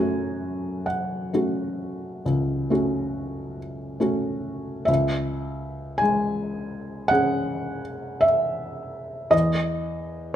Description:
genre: classical, romantic nocturne for solo piano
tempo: 43-58 BPM (dotted quarters)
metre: 12/8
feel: rubato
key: F# minor, C# minor from 4.9 s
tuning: A4 = 440 Hz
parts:
  - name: felt-muted upright piano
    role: solo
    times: 0.0-10.4 s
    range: C#2 to G#5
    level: -23 LUFS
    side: equal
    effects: none
room: light reverb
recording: close, detailed microphones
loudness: -23 LUFS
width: side -10 dB against mid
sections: 0.0-4.9 A section; 4.9-10.4 B section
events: none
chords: 0.0 F#m; 4.9 C#m; 9.3 N.C.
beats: 0.89 2.27 3.58 | 4.88 6.01 7.11 8.24 | 9.33

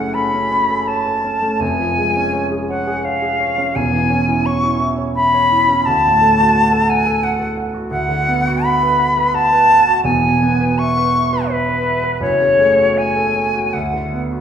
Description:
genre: classical, romantic duo for flute and grand piano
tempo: 85 BPM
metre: 3/4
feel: uneven beats, rubato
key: unclear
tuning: A4 = 440 Hz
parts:
  - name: silver concert flute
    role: melody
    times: 0.0-14.2 s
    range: B4 to C#6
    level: -15 LUFS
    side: left 1 dB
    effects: none
  - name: clear grand piano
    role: accompaniment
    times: 0.0-14.4 s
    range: E1 to F#5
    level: -19 LUFS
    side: right 2 dB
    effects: none
room: wet recital hall reverb, RT60 1.4 s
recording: heard from further back in the room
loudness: -13 LUFS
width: side -8 dB against mid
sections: 0.0-14.4 A section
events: none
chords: 0.0 F#m; 1.6 C#/E#; 3.8 C#m/E; 5.8 D; 7.9 Bm/D; 10.0 E; 12.2 F#m; 13.7 Bm/D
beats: 0.15 0.89 | 1.61 2.34 3.06 | 3.76 4.45 5.15 | 5.85 6.54 7.22 | 7.90 8.65 9.34 | 10.05 10.79 11.50 | 12.21 12.97 13.73

